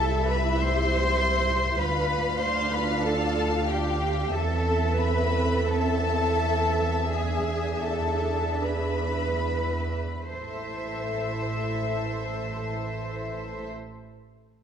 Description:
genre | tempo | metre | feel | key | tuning
classical, slow romantic movement for string orchestra | 35-52 BPM | 4/4 | rubato | A minor | A4 = 441 Hz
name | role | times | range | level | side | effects
clear studio violin section | melody | 0.0-13.7 s | E5 to F5 | -33 LUFS | left 7 dB | none
dark studio violin section | second line | 0.0-13.7 s | A4 to C6 | -33 LUFS | left 6 dB | none
dark studio viola section | accompaniment | 0.0-13.7 s | C4 to A4 | -32 LUFS | right 2 dB | none
rich studio double bass section | bass | 0.0-13.7 s | A1 to E2 | -29 LUFS | right 2 dB | none
warm studio cello section | bass | 0.0-13.7 s | G4 to C5 | -29 LUFS | right 1 dB | none
room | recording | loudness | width
moderate concert hall reverb, RT60 1.8 s | dark, warm production | -24 LUFS | side -8 dB against mid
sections
0.0-10.3 A section; 10.3-14.6 B section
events
slowing down 0.0-10.3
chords
0.0 C; 1.8 Bdim/D; 4.3 Am/E; 7.1 E7; 10.3 Am

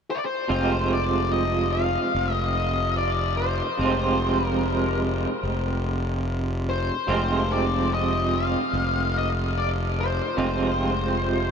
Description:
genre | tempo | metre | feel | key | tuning
rock | 73 BPM | 4/4 | straight | F dorian | A4 = 441 Hz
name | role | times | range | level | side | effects
octave-fuzz lead guitar | melody | 0.1-11.5 s | C5 to F5 | -26 LUFS | left 4 dB | distortion, ping-pong delay
electric guitar through a small old amp | riff | 0.5-11.5 s | F2 to F4 | -26 LUFS | right 4 dB | tremolo
fuzz fingered electric bass | bass | 0.5-11.5 s | F1 | -26 LUFS | left 1 dB | overdrive
room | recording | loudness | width
moderate huge ambient reverb, RT60 8.2 s | dreamy mix soaked in reverb | -22 LUFS | side -6 dB against mid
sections
0.5-11.5 A section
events
none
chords
0.0 N.C.; 0.5 Fm

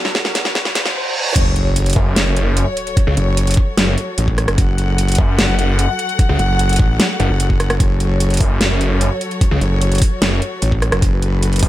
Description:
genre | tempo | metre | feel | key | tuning
heavy wobble dubstep | 149 BPM | 4/4 | half-time | F# minor | A4 = 442 Hz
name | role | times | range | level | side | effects
dark concert grand piano | melody | 0.0-1.3 s | F#3 to F#4 | -33 LUFS | right 2 dB | none
warm studio string section | sustained chords | 0.0-11.7 s | B2 to F#5 | -23 LUFS | left 2 dB | sidechain pumping
dubstep drum kit | drums | 0.0-11.7 s | crash cymbal, hi-hat, rim click, snare drum | -19 LUFS | equal | none
riser, reverse cymbal and sub drop | sound effects | 0.0-3.0 s | none | -22 LUFS | right 1 dB | none
electronic kick drum | drums | 0.1-11.7 s | none | -15 LUFS | equal | none
wobble bass | bass | 1.4-11.6 s | F#1 to A1 | -16 LUFS | equal | chorus, overdrive
snarling distorted saw bass | bass | 2.0-11.7 s | F#1 to C#2 | -16 LUFS | equal | distortion, overdrive
room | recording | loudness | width
little or no reverb | high-pass filter | -14 LUFS | side -14 dB against mid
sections
0.0-1.4 A section; 1.4-11.7 B section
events
build-up 0.0-1.4; drum fill 0.0-1.0; riser 0.0-1.4; reverse cymbal 0.6-1.4; drop 1.4-11.7; impact 1.4-3.0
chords
0.0 Bm; 1.4 F#m

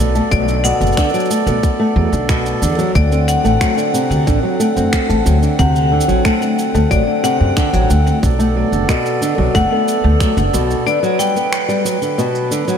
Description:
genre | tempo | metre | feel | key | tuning
folktronica | 91 BPM | 4/4 | straight | D mixolydian | A4 = 441 Hz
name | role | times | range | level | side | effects
hand-pumped harmonium | sustained chords | 0.0-12.8 s | D3 to F#5 | -21 LUFS | right 2 dB | none
flamenco guitar | arpeggios | 0.0-12.8 s | B2 to C4 | -18 LUFS | equal | tape echo
upright bass | bass | 0.0-10.7 s | F#1 to F#2 | -16 LUFS | equal | none
electronic shaker and finger snaps | drums | 0.2-12.8 s | none | -26 LUFS | right 2 dB | none
marimba with hard mallets | second line | 0.3-11.5 s | D5 to G5 | -22 LUFS | left 4 dB | ping-pong delay
electronic kick drum | drums | 0.3-10.3 s | none | -18 LUFS | equal | none
room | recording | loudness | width
moderate huge ambient reverb, RT60 5.1 s | dreamy mix soaked in reverb | -13 LUFS | side -8 dB against mid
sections
0.0-12.8 A section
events
none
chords
0.0 Bm7; 3.0 D7; 8.2 Bm7; 10.9 Gmaj7

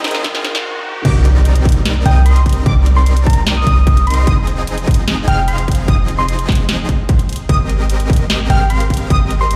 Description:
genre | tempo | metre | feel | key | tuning
future bass | 149 BPM | 4/4 | half-time | C minor | A4 = 438 Hz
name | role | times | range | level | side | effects
overdriven tine electric piano | accompaniment | 0.0-1.1 s | Eb4 to G5 | -33 LUFS | equal | fast tremolo, sidechain pumping, dub echo
rich studio string section | sustained chords | 0.0-1.0 s | none | barely audible | none | none
supersaw chords | riff | 0.0-9.6 s | F3 to F5 | -26 LUFS | equal | sidechain pumping, dub echo
trap drum kit | drums | 0.0-9.6 s | crash cymbal, hi-hat, snare drum | -24 LUFS | equal | none
riser and impact | sound effects | 0.0-2.7 s | none | -24 LUFS | equal | none
electronic kick drum | drums | 0.2-9.2 s | none | -17 LUFS | equal | distortion
unison pluck | arpeggios | 1.1-9.6 s | D6 to F6 | -29 LUFS | equal | phaser, sidechain pumping
warm 808-style bass | bass | 1.1-9.6 s | F1 to C2 | -17 LUFS | equal | sidechain pumping
soft struck synth lead | melody | 2.1-9.5 s | G5 to Eb6 | -25 LUFS | equal | chorus, sidechain pumping, digital delay
room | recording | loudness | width
digital ambience | played on a big sound system in a bare room, large studio reverb, high-pass filter | -14 LUFS | mono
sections
0.0-1.1 A section; 1.1-9.6 B section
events
build-up 0.0-1.1; drum fill 0.0-0.6; riser 0.0-1.1; break 0.6-1.1; drop 1.1-9.6; impact 1.1-2.7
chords
0.0 Fm7; 1.1 Cm9; 4.3 Fm7; 7.5 Abmaj9

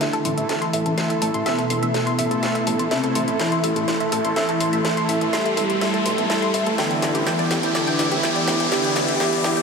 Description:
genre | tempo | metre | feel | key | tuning
melodic techno | 124 BPM | 4/4 | straight | A minor | A4 = 440 Hz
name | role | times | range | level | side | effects
mellow synth brass | melody | 0.0-9.6 s | B2 to G4 | -25 LUFS | equal | chorus, diffuse ambient delay
evolving wavetable pad | sustained chords | 0.0-9.6 s | G4 to D6 | -30 LUFS | equal | none
tight sequenced synth | arpeggios | 0.0-9.6 s | G4 to C6 | -25 LUFS | equal | chorus, cassette tape, analog delay
brassy analog pad | stabs | 0.0-9.6 s | E3 to A4 | -25 LUFS | right 1 dB | chorus, analog delay
house drum kit | drums | 0.0-9.6 s | hi-hat, snare drum | -26 LUFS | left 1 dB | high-pass filter on hats, high-pass filter on snare, high-pass filter on room
riser | sound effects | 0.0-9.6 s | none | -29 LUFS | left 1 dB | none
fat analog bass | bass | 0.2-9.6 s | E1 to B1 | -30 LUFS | left 1 dB | high-pass filter
room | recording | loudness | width
wet huge ambient reverb, RT60 8.2 s | dreamy mix soaked in reverb, high-pass filter, faint mains hum | -18 LUFS | side -5 dB against mid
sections
0.0-9.6 A section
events
build-up 0.0-9.6; drum fill 0.0-9.6; riser 0.0-9.6; filter sweep on analog polysynth 0.0-9.6; filter sweep on analog synth pad 0.0-9.6; filter sweep 0.0-9.6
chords
0.0 Am; 6.8 Em7

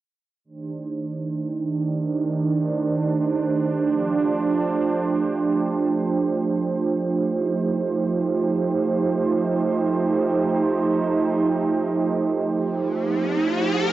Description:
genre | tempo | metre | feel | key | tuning
hip hop | free time | none | none | C dorian | A4 = 444 Hz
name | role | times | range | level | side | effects
warm analog pad | sustained chords | 0.4-13.9 s | Eb3 to C5 | -20 LUFS | right 3 dB | lush chorus
riser | sound effects | 12.9-13.9 s | none | -26 LUFS | left 2 dB | none
room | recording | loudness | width
moderate spring reverb, RT60 1.9 s | home recording on cassette, nothing above 7.7 kHz | -20 LUFS | side -13 dB against mid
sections
0.4-13.9 A section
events
riser 12.9-13.9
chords
0.4 Cm69; 3.8 G9sus4; 7.3 F9

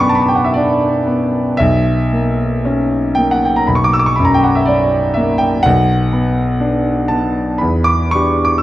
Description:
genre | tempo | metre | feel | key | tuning
classical, romantic nocturne for solo piano | 55-63 BPM | 4/4 | rubato | B minor | A4 = 440 Hz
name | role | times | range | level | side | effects
warm grand piano | solo | 0.0-8.6 s | B1 to E6 | -12 LUFS | equal | none
room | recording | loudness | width
wet recital hall reverb, RT60 1.4 s | dark, warm production | -12 LUFS | side -14 dB against mid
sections
0.0-8.6 A section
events
none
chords
0.0 Bm; 1.6 F#7/B; 5.7 Bm; 7.6 Em7

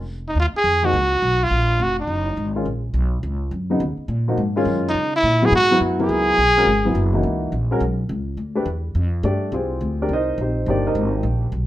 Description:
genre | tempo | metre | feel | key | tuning
jazz | 210 BPM | 4/4 | swing 62% on 8ths | unclear | A4 = 437 Hz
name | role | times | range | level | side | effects
upright bass | bass | 0.0-11.7 s | F1 to Db3 | -22 LUFS | equal | none
warm trumpet | melody | 0.3-2.5, 4.9-7.1 s | Eb4 to Ab4 | -18 LUFS | equal | none
warm upright piano | accompaniment | 0.8-11.5 s | Db3 to Eb5 | -22 LUFS | left 1 dB | none
room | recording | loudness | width
moderate club reverb, RT60 0.8 s | minimal, uncompressed stereo recording | -18 LUFS | side -14 dB against mid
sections
0.4-9.5 A section; 9.5-11.7 B section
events
none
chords
0.4 Ebm11; 5.0 Dbm11; 8.4 G7(no3); 9.5 Cm9

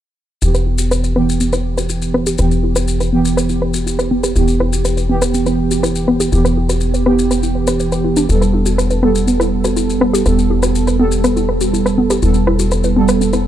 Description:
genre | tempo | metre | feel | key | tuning
melodic techno | 122 BPM | 4/4 | straight | E minor | A4 = 440 Hz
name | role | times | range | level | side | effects
warbly dusty pluck | arpeggios | 0.4-13.4 s | B3 to B4 | -20 LUFS | left 2 dB | chorus, digital delay
analog synth brass | stabs | 0.4-13.5 s | E3 to A4 | -17 LUFS | right 4 dB | chorus, digital delay
tight sequencer bass | bass | 0.4-13.5 s | E1 | -18 LUFS | left 1 dB | tube saturation
maracas | percussion | 0.4-13.4 s | none | -26 LUFS | left 7 dB | none
electronic rim click | drums | 0.5-13.4 s | none | -22 LUFS | equal | low-pass filter on snare, studio ambience
room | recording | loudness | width
light reverb | dark, warm production | -13 LUFS | side -11 dB against mid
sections
0.4-13.5 A section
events
filter sweep on synth arpeggio sound 0.4-13.5; filter sweep on analog polysynth 0.4-13.5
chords
0.4 Em; 8.3 Gadd9/E

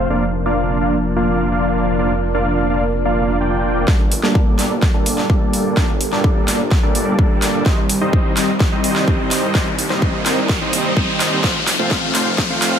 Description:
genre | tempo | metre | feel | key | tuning
EDM, festival progressive house | 127 BPM | 4/4 | straight | G minor | A4 = 440 Hz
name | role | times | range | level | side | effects
lush unison pad | sustained chords | 0.0-12.8 s | Eb3 to A4 | -23 LUFS | equal | chorus, phaser, sidechain pumping
dense compressed supersaw | riff | 0.0-12.8 s | G3 to G5 | -19 LUFS | right 1 dB | sidechain pumping, low-pass filter, ping-pong delay
wide detuned saw bass | bass | 0.0-12.8 s | F1 to C2 | -25 LUFS | equal | chorus, tube saturation, sidechain pumping, high-pass filter
big-room dance drum kit | drums | 3.9-12.7 s | hi-hat, snare drum | -22 LUFS | equal | high-pass filter on snare, high-pass filter on hats, high-pass filter on room
electronic kick drum | drums | 3.9-12.5 s | none | -17 LUFS | equal | none
riser | sound effects | 6.4-12.8 s | none | -24 LUFS | left 2 dB | none
room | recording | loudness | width
moderate recital hall reverb, RT60 1.3 s | high-pass filter | -14 LUFS | side -8 dB against mid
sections
0.0-3.9 A section; 3.9-12.8 B section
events
filter sweep on analog synth pad 0.0-3.9, 3.9-12.8; build-up 3.9-12.8; drum fill 3.9-12.8; filter sweep on supersaw synth 3.9-12.8; filter sweep 3.9-12.8; riser 6.4-12.8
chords
0.1 Bb/F; 3.9 Gmadd9; 7.7 Cm; 11.4 F

